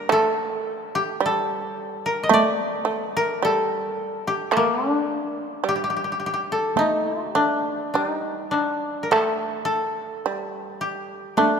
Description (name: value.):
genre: japanese traditional, Japanese chamber music.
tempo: 54 BPM.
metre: 4/4.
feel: rubato.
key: G hirajoshi.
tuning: A4 = 440 Hz.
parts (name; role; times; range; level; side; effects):
koto; melody; 0.0-11.6 s; Bb3 to Eb5; -23 LUFS; left 2 dB; none.
shamisen; second line; 0.0-11.6 s; G3 to A3; -25 LUFS; right 5 dB; none.
taiko ensemble; percussion; 0.1-11.6 s; none; -31 LUFS; equal; none.
room: moderate church reverb, RT60 3.6 s.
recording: minimal, uncompressed stereo recording.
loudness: -21 LUFS.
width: side -6 dB against mid.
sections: 0.0-9.1 A section; 9.1-11.6 B section.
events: none.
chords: none.